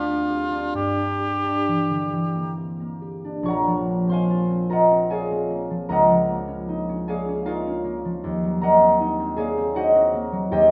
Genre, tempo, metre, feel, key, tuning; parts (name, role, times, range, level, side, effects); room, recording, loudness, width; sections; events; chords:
classical, impressionist duo for cor anglais and harp; 64-79 BPM; 3/4; rubato; G minor, Bb minor from 3.5 s; A4 = 445 Hz
warm cor anglais; melody; 0.0-2.5 s; F4 to G4; -28 LUFS; equal
concert harp; accompaniment; 0.0-10.7 s; Bb1 to Db6; -22 LUFS; equal
moderate concert hall reverb, RT60 2.0 s; -22 LUFS; mono
0.0-3.5 A section; 3.5-10.7 B section
0.0 D7sus4; 0.8 Gm6; 3.5 Bbmadd9; 5.9 Db69; 8.2 Ebm6